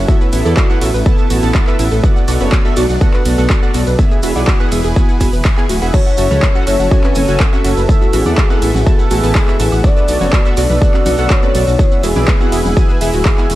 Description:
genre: progressive house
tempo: 123 BPM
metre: 4/4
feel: straight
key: unclear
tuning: A4 = 440 Hz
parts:
  - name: lush unison pad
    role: sustained chords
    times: 0.0-13.6 s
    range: E3 to B4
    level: -24 LUFS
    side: equal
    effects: chorus, sidechain pumping
  - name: wide unison pluck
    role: arpeggios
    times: 0.0-13.6 s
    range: F#4 to F#5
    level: -23 LUFS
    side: equal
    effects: sidechain pumping, digital delay
  - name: dark detuned saw bass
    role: bass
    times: 0.0-13.6 s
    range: D1 to E2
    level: -16 LUFS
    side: equal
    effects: sidechain pumping
  - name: chorused polysynth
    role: stabs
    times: 0.1-13.5 s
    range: B3 to A5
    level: -20 LUFS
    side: right 3 dB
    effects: sidechain pumping, digital delay
  - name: electronic kick drum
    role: drums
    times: 0.1-13.4 s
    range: none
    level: -12 LUFS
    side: equal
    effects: overdrive, studio reverb
  - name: maracas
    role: percussion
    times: 0.1-13.6 s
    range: none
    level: -32 LUFS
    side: right 3 dB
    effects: none
  - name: big-room dance drum kit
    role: drums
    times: 0.3-13.6 s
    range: crash cymbal, handclaps, hi-hat, ride cymbal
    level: -23 LUFS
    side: equal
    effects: overdrive, sidechain pumping on hats, studio reverb, sidechain pumping on cymbals
  - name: soft octave-layered synth lead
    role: melody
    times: 5.9-13.6 s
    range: G#4 to D5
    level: -19 LUFS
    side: left 2 dB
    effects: chorus, tremolo, sidechain pumping, digital delay
  - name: backwards swelling texture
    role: texture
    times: 6.9-13.6 s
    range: E6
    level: -30 LUFS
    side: right 7 dB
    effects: built-in reverb, sidechain pumping
  - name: congas and woodblock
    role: percussion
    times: 6.3-13.5 s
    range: none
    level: -24 LUFS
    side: equal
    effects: sidechain pumping on perc, studio reverb
room: digital ambience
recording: dark, warm production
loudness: -10 LUFS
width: side -15 dB against mid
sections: 0.0-13.6 A section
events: none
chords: 0.1 Asus2; 2.0 Bm7; 4.0 E; 5.9 F#m7; 7.9 Asus2; 9.8 Bm7; 11.8 E

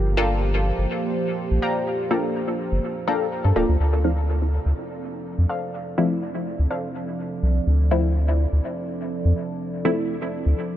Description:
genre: dub techno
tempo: 124 BPM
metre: 4/4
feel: swing 54% on 16ths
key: D minor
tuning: A4 = 440 Hz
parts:
  - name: dark analog pad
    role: sustained chords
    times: 0.0-10.8 s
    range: F3 to D5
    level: -28 LUFS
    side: right 1 dB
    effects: chorus, phaser
  - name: round analog bass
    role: bass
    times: 0.0-10.5 s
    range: D1 to G2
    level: -19 LUFS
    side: equal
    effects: none
  - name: warbly dusty pluck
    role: riff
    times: 0.2-8.0 s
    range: A4 to Bb5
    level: -33 LUFS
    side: left 1 dB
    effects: chorus, vintage 12-bit sampler grit, dub echo
  - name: filtered dub chord stab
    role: stabs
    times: 0.2-10.2 s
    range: F3 to A4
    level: -26 LUFS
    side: left 1 dB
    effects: chorus, phaser, dub echo
room: light reverb, digital ambience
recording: none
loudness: -21 LUFS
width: side -12 dB against mid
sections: 0.0-10.8 A section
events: none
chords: 0.0 Gm7; 3.8 Dm7

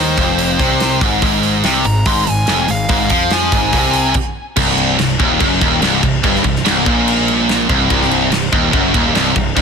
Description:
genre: heavy metal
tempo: 144 BPM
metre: 4/4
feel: straight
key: C minor from 4.6 s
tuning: A4 = 441 Hz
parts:
  - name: high-gain lead guitar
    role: melody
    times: 0.0-4.1 s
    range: C5 to C6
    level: -20 LUFS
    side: left 1 dB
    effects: distortion, tape echo
  - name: distorted electric guitar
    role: riff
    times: 0.0-9.6 s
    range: C2 to F3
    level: -18 LUFS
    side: left 10 dB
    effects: overdrive
  - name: high-gain distorted guitar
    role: riff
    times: 0.0-9.6 s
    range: C2 to F3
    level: -17 LUFS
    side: right 13 dB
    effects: distortion
  - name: fuzz picked electric bass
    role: bass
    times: 0.0-9.6 s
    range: C1 to F2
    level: -22 LUFS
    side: equal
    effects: overdrive
  - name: modern studio drum kit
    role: drums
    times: 0.2-9.6 s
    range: crash cymbal, hi-hat, kick drum, snare drum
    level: -18 LUFS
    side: equal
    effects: none
  - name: warm studio string section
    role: sustained chords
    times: 4.6-9.6 s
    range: G3 to C5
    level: -30 LUFS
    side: left 2 dB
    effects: none
  - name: heavy high-gain guitar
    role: riff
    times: 4.6-9.6 s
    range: C2 to Bb2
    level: -20 LUFS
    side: equal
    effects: distortion
room: little or no reverb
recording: dense, heavily limited modern master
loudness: -12 LUFS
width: side -6 dB against mid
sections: 0.0-4.6 A section; 4.6-9.6 B section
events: lead electric guitar solo 0.0-4.6; stop 4.1-4.6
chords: 0.0 F5; 1.2 Fm; 4.6 Cm

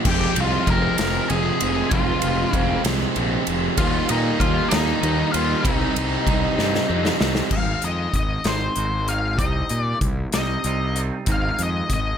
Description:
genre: quiet-loud alternative rock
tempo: 64 BPM (dotted quarters)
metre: 6/8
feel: straight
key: unclear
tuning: A4 = 440 Hz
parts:
  - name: crunchy overdriven guitar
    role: riff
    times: 0.0-7.5 s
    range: F2 to Eb4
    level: -24 LUFS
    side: right 14 dB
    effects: none
  - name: thick fuzz guitar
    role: riff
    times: 0.0-7.5 s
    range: F2 to Eb4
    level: -27 LUFS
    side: left 16 dB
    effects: distortion
  - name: big rock drum kit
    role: drums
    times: 0.0-12.0 s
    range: crash cymbal, hi-hat, kick drum, ride cymbal, snare drum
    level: -24 LUFS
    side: equal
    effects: none
  - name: octave-fuzz lead guitar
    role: melody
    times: 0.1-12.2 s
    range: Eb4 to Bb5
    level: -25 LUFS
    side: left 4 dB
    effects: distortion, slapback echo
  - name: fuzz fingered electric bass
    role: bass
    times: 0.1-12.1 s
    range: F1 to Bb2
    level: -25 LUFS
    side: equal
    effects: overdrive
  - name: semi-hollow electric guitar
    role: arpeggios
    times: 7.5-12.2 s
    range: Ab2 to Eb4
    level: -30 LUFS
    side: right 7 dB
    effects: analog chorus
room: little or no reverb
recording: none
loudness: -19 LUFS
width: side -8 dB against mid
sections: 0.0-7.5 A section; 7.5-12.2 B section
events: drum fill 6.6-7.5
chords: 0.1 Fm; 3.8 Ebadd9; 5.6 Cm; 7.5 Ab; 9.4 Cm; 11.3 Ab

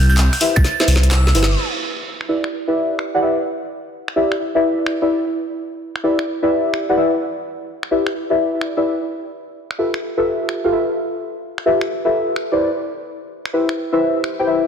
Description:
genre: UK garage, two-step garage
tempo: 128 BPM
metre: 4/4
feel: swing 66% on 16ths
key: E minor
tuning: A4 = 439 Hz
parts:
  - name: dark detuned saw bass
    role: bass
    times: 0.0-1.6 s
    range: G1 to C2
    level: -14 LUFS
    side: equal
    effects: tube saturation, sidechain pumping
  - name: glassy synth bell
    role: melody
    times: 0.1-1.6 s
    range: E6 to A6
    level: -25 LUFS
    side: right 3 dB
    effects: chorus, digital delay
  - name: shekere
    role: percussion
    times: 0.1-1.6 s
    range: none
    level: -28 LUFS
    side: left 2 dB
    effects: none
  - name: garage drum kit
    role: drums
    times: 0.2-14.4 s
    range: crash cymbal, finger snaps, handclaps, hi-hat, snare drum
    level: -24 LUFS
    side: equal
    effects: low-pass filter on hats, small room ambience, low-pass filter on snare, low-pass filter on cymbals
  - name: deep mellow chord stab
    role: stabs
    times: 0.4-14.6 s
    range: E4 to G5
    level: -18 LUFS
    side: left 1 dB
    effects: chorus, digital delay
  - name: electronic kick drum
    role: drums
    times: 0.6 s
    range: none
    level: -14 LUFS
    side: equal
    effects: small room ambience
room: moderate lush hall reverb, RT60 2.2 s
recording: dense, heavily limited modern master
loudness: -16 LUFS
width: side -7 dB against mid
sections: 0.0-1.6 A section; 1.6-14.7 B section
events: kick drops out 0.6-1.6; drum fill 0.6-1.6; band accent 1.4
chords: 0.0 Cmaj7; 1.6 Em7; 9.1 G13; 12.6 Cmaj7

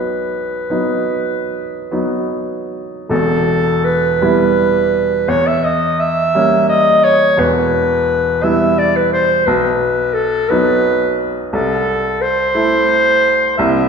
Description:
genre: classical, romantic duo for clarinet and grand piano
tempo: 49-60 BPM (dotted quarters)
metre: 12/8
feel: rubato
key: E minor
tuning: A4 = 441 Hz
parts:
  - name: warm clarinet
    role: melody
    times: 0.0-13.9 s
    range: A4 to E5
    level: -14 LUFS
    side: equal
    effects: none
  - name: clear baby grand piano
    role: accompaniment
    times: 0.0-13.9 s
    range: E1 to E4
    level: -17 LUFS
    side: right 1 dB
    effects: none
room: wet scoring stage reverb, RT60 1.5 s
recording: recorded in a church or concert hall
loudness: -12 LUFS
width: side -6 dB against mid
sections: 0.0-3.1 A section; 3.1-13.9 A section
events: none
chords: 0.0 B; 3.1 Em; 5.3 Edim7; 7.4 Em; 9.5 B; 11.5 Am/C

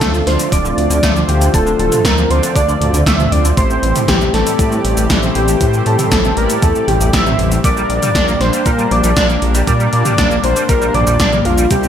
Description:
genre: synthwave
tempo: 118 BPM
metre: 4/4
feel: straight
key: unclear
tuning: A4 = 440 Hz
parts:
  - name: warm velvety synth lead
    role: melody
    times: 0.0-11.9 s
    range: F4 to E5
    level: -18 LUFS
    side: left 1 dB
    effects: chorus, cassette tape, digital delay
  - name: FM electric piano with soft pad layer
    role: second line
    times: 0.0-11.9 s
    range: F5 to E6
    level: -24 LUFS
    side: right 1 dB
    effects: chorus, digital delay
  - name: chorused pulse-width pad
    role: sustained chords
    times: 0.0-11.9 s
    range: D3 to G4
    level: -21 LUFS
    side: left 2 dB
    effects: sidechain pumping
  - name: clean electric guitar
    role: riff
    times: 0.0-11.9 s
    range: A2 to D4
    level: -24 LUFS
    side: right 2 dB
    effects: ensemble chorus, digital delay
  - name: mellow synth brass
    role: stabs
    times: 0.0-11.9 s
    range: G3 to D5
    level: -23 LUFS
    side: right 2 dB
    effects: chorus
  - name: dark detuned saw bass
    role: bass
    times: 0.0-11.9 s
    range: D1 to Bb2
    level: -17 LUFS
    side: equal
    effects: sidechain pumping
  - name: 80s electronic pad drums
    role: drums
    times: 0.0-11.9 s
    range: hi-hat, shaker, snare drum, toms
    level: -18 LUFS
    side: equal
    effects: gated reverb on snare and toms, overdrive, studio reverb, gated reverb
  - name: electronic kick drum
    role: drums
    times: 0.0-11.8 s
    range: none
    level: -17 LUFS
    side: equal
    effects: overdrive, studio reverb
room: light reverb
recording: none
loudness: -11 LUFS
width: side -9 dB against mid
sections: 0.0-11.9 A section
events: none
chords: 0.0 Dm7; 3.6 Am7; 7.6 Gm/Bb

